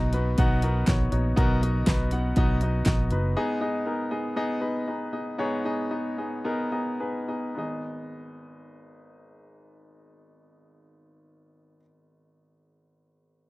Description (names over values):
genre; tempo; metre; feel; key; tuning
piano-driven pop; 103-121 BPM; 4/4; straight; G# minor; A4 = 440 Hz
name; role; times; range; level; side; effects
clear baby grand piano; accompaniment; 0.0-13.5 s; G#1 to F#5; -28 LUFS; left 1 dB; none
vintage muted fingered electric bass; bass; 0.0-3.3 s; F#1 to B1; -25 LUFS; equal; none
pop drum kit; drums; 0.1-3.2 s; handclaps, hi-hat, kick drum, snare drum, toms; -24 LUFS; equal; none
room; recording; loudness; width
light reverb; dry, close 1970s-style studio recording; -24 LUFS; side -20 dB against mid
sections
0.0-7.6 A section; 7.6-12.3 B section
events
slowing down 3.4-7.6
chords
0.0 B; 3.4 G#m